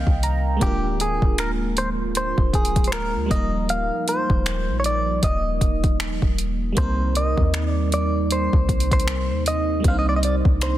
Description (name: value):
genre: contemporary R&B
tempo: 78 BPM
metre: 4/4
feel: swing 58% on 16ths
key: C minor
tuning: A4 = 440 Hz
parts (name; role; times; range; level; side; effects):
- FM electric piano; accompaniment; 0.0-10.8 s; G3 to Bb5; -29 LUFS; right 3 dB; chorus
- deep dark ambient pad; sustained chords; 0.0-10.8 s; C3 to F4; -30 LUFS; right 2 dB; chorus, built-in reverb
- soft 808-style bass; bass; 0.0-10.8 s; D1 to Eb2; -24 LUFS; equal; none
- smooth R&B drum kit; drums; 0.1-10.8 s; finger snaps, hi-hat, kick drum; -22 LUFS; equal; overdrive, soft clipping on snare
- direct-recorded clean electric guitar; melody; 0.6-10.8 s; G4 to F5; -25 LUFS; equal; harmonic tremolo
room: light reverb, digital ambience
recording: dense, heavily limited modern master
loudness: -19 LUFS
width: side -13 dB against mid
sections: 0.0-10.8 A section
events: FM electric piano fill 0.0-0.6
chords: 0.0 Cm7; 0.6 Bb7/D; 3.3 Eb; 6.8 Cm7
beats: | 0.61 1.38 2.15 2.92 | 3.69 4.46 5.23 6.00 | 6.77 7.54 8.30 9.07 | 9.84 10.61